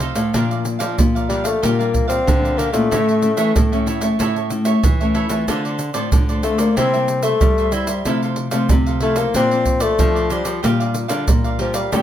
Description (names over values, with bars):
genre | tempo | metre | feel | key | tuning
samba and choro | 93 BPM | 4/4 | straight | unclear | A4 = 438 Hz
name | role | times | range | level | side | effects
cavaquinho | accompaniment | 0.0-12.0 s | D4 to G5 | -25 LUFS | right 5 dB | none
nylon-string guitar | accompaniment | 0.0-12.0 s | G2 to F4 | -24 LUFS | left 3 dB | none
nylon-string guitar | bass | 0.0-12.0 s | A2 to G3 | -22 LUFS | left 1 dB | none
egg shaker, pandeiro and surdo | percussion | 0.0-12.0 s | none | -20 LUFS | right 1 dB | none
mellow bassoon | melody | 1.3-12.0 s | F3 to C4 | -19 LUFS | left 3 dB | none
room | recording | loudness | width
light reverb | none | -15 LUFS | side -11 dB against mid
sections
0.0-12.0 A section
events
none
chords
0.3 Bb; 1.6 Gm7/Bb; 2.9 A; 5.5 Dm7; 6.8 C7; 8.1 Fmaj7/C; 9.3 Bbadd9; 10.6 Gm7/Bb